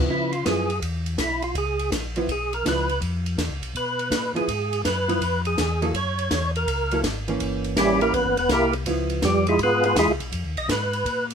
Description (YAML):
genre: soul jazz organ trio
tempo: 164 BPM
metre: 4/4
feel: swing 66% on 8ths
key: unclear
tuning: A4 = 440 Hz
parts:
  - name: vintage hollow-body jazz guitar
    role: accompaniment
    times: 0.0-9.4 s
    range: Fb3 to A4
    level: -27 LUFS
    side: right 3 dB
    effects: none
  - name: mellow tonewheel organ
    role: bass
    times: 0.0-11.3 s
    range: E1 to Db3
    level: -28 LUFS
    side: left 1 dB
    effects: slow rotary speaker
  - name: percussive tonewheel organ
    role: melody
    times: 0.1-11.3 s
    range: G3 to Eb5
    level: -23 LUFS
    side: right 1 dB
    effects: slow rotary speaker, overdrive, chorus vibrato
  - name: compact cocktail drum kit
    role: drums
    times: 0.1-11.3 s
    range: hi-hat, kick drum, ride cymbal, snare drum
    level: -28 LUFS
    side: equal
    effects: none
room: light reverb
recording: minimal, uncompressed stereo recording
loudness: -21 LUFS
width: side -7 dB against mid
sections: 0.1-11.3 A section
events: tonewheel organ solo 0.1-11.3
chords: 0.1 Db7#9; 5.9 Gb7; 7.4 Gdim7; 8.9 Db7#9; 10.3 Fm7b5